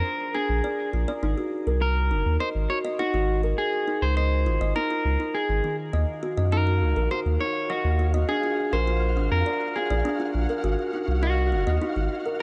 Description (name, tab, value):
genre	IDM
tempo	102 BPM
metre	4/4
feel	straight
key	unclear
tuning	A4 = 438 Hz
part	clean electric guitar	melody	0.0-11.8 s	Gb4 to Db5	-30 LUFS	equal	tape echo
part	kalimba	arpeggios	0.0-12.4 s	Eb3 to Eb5	-31 LUFS	equal	delay
part	warm sub bass	bass	0.0-12.1 s	Gb1 to Gb2	-26 LUFS	equal	none
part	flickering grainy texture	texture	6.2-12.4 s	Gb4 to F5	-39 LUFS	equal	built-in reverb
room	light reverb, digital ambience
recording	nothing above 10.3 kHz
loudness	-25 LUFS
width	mono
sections	0.0-12.4 A section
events	none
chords	0.0 Bb7; 1.2 Ab9; 3.6 Dbmaj7(no3); 5.9 Ebm; 8.3 Bb7; 10.6 Ab7